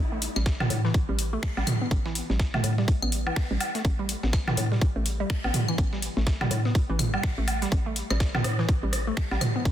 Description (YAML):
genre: minimal techno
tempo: 124 BPM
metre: 4/4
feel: swing 60% on 16ths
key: unclear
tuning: A4 = 440 Hz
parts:
  - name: hollow knocking FM bass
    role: bass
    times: 0.0-9.7 s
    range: A1 to A2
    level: -28 LUFS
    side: equal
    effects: sidechain pumping
  - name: hollow square pluck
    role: riff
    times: 0.1-9.6 s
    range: E3 to B3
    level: -32 LUFS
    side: equal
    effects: chorus, phaser, cassette tape, sidechain pumping, ping-pong delay
  - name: dusty soul sampler-style drum kit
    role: drums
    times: 0.2-9.7 s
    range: hi-hat, snare drum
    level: -40 LUFS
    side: right 2 dB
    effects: high-pass filter on snare, sidechain pumping on hats, high-pass filter on hats
  - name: garage drum kit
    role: drums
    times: 0.2-9.5 s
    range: finger snaps, hi-hat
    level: -34 LUFS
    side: left 3 dB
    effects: soft clipping on snare
  - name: organic electronic drum kit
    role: percussion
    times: 0.4-9.5 s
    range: claves, rim click, toms, woodblock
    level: -29 LUFS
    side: right 1 dB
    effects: soft clipping on snare, ping-pong delay
  - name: electronic kick drum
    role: drums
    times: 0.5-9.7 s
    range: none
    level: -24 LUFS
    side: equal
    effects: none
room: light reverb, digital ambience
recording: dense, heavily limited modern master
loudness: -24 LUFS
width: side -11 dB against mid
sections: 0.0-9.7 A section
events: none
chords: 0.0 A5